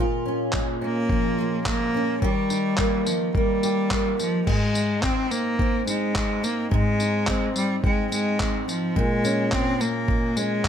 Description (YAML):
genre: acoustic pop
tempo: 107 BPM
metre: 4/4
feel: straight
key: Ab major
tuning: A4 = 440 Hz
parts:
  - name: fingerpicked steel-string acoustic guitar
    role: accompaniment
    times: 0.0-10.7 s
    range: Ab2 to G4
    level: -26 LUFS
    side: equal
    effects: double-tracked left and right
  - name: dusty soul sampler-style drum kit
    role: drums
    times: 0.5-10.7 s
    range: crash cymbal, handclaps, kick drum, tambourine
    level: -26 LUFS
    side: equal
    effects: none
  - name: rich cello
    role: melody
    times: 0.8-10.7 s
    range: F3 to C4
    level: -24 LUFS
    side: left 1 dB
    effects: none
room: light reverb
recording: none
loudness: -21 LUFS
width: side -8 dB against mid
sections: 0.0-4.5 A section; 4.5-10.7 B section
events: none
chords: 0.0 Bbm7; 2.2 Eb; 4.5 Ab; 9.0 Bbm7